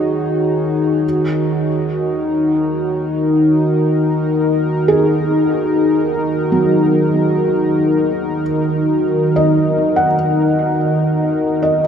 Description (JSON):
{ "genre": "ambient", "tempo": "free time", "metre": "none", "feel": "none", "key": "unclear", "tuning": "A4 = 440 Hz", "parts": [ { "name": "warm analog pad", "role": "sustained chords", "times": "0.0-11.9 s", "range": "Eb3 to Db5", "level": "-14 LUFS", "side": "equal", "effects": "chorus" }, { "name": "felt-muted upright piano", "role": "arpeggios", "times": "0.0-11.9 s", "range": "Gb3 to Gb5", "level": "-18 LUFS", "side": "right 1 dB", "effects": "tape echo" } ], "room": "wet cathedral reverb, RT60 5.9 s", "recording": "in a vast, echoing space", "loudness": "-13 LUFS", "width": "side -8 dB against mid", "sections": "0.0-1.0 A section; 1.0-11.9 B section", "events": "none", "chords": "0.0 Dbsus4/Eb" }